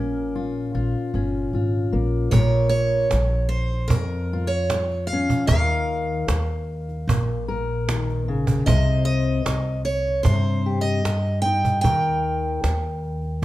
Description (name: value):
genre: acoustic folk duo or small band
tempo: 76 BPM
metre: 4/4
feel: straight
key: Bb dorian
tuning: A4 = 443 Hz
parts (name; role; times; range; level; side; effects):
- picked steel-string acoustic guitar; melody; 0.0-13.4 s; Bb4 to G5; -25 LUFS; right 2 dB; none
- fingerpicked steel-string acoustic guitar; accompaniment; 0.0-13.4 s; F2 to C5; -26 LUFS; left 3 dB; none
- upright bass; bass; 0.0-13.4 s; G1 to G2; -24 LUFS; equal; none
- cajon; percussion; 2.3-13.4 s; none; -24 LUFS; right 2 dB; none
room: moderate large studio reverb, RT60 0.9 s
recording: none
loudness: -20 LUFS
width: side -15 dB against mid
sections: 0.0-2.3 A section; 2.3-13.4 B section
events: none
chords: 0.0 Bbm; 5.5 Ebsus2; 8.7 Cm; 11.8 Eb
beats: 0.74 1.53 | 2.33 3.12 3.92 4.71 | 5.50 6.29 7.09 7.88 | 8.67 9.46 10.26 11.05 | 11.84 12.63 13.43